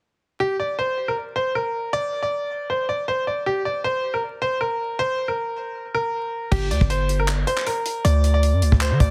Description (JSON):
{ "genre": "hip hop, trap", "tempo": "157 BPM", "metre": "4/4", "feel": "half-time", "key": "G minor", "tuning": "A4 = 437 Hz", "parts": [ { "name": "bright grand piano", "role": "melody", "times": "0.4-9.1 s", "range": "G4 to D5", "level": "-26 LUFS", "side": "equal", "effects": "none" }, { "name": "distorted 808-style bass", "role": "bass", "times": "6.5-9.1 s", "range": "G1 to D3", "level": "-21 LUFS", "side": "equal", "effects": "distortion" }, { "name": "tight funk drum kit", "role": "drums", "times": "6.5-9.1 s", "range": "crash cymbal, handclaps, hi-hat, kick drum", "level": "-24 LUFS", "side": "equal", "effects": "none" } ], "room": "light reverb, small room ambience", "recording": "dense, heavily limited modern master, vinyl crackle", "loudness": "-23 LUFS", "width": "mono", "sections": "0.4-6.5 A section; 6.5-9.1 B section", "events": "none", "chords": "0.4 N.C.; 6.5 Gm; 8.0 N.C." }